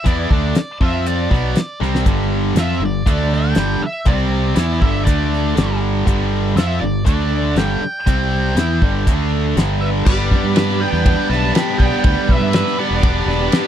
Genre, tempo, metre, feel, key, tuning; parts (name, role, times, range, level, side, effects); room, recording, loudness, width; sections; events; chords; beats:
classic rock; 120 BPM; 4/4; straight; G mixolydian; A4 = 441 Hz
octave-fuzz lead guitar; melody; 0.0-13.7 s; D5 to B5; -25 LUFS; right 2 dB; wah, distortion
tight distorted guitar; riff; 0.0-13.7 s; G2 to B4; -22 LUFS; left 16 dB; distortion
cranked stack guitar; riff; 0.1-13.7 s; G2 to B4; -22 LUFS; right 16 dB; overdrive
modern bright fingered electric bass; bass; 0.1-13.5 s; E1 to G2; -20 LUFS; equal
damped 70s drum kit; drums; 0.1-13.6 s; crash cymbal, hi-hat, kick drum, ride cymbal, snare drum; -16 LUFS; equal
dark smooth lead guitar; second line; 9.8-13.7 s; G4 to G5; -26 LUFS; right 3 dB; overdrive
tonewheel organ; sustained chords; 10.1-13.7 s; G3 to B4; -30 LUFS; equal
little or no reverb; dry, close 1970s-style studio recording; -14 LUFS; side -10 dB against mid
0.0-10.1 A section; 10.1-13.7 B section
drum fill 1.8
0.0 G (rootless); 0.8 F5; 1.3 G; 3.1 D5; 3.6 G5; 4.1 C5; 4.6 G; 5.1 D5; 5.6 G5; 7.1 D5; 7.6 G5; 8.1 C5; 8.6 G; 9.1 D5; 9.6 G5; 10.1 G
| 0.05 0.56 1.06 1.56 | 2.06 2.56 3.06 3.57 | 4.07 4.57 5.07 5.57 | 6.07 6.57 7.07 7.57 | 8.07 8.57 9.07 9.57 | 10.06 10.56 11.06 11.55 | 12.05 12.54 13.04 13.53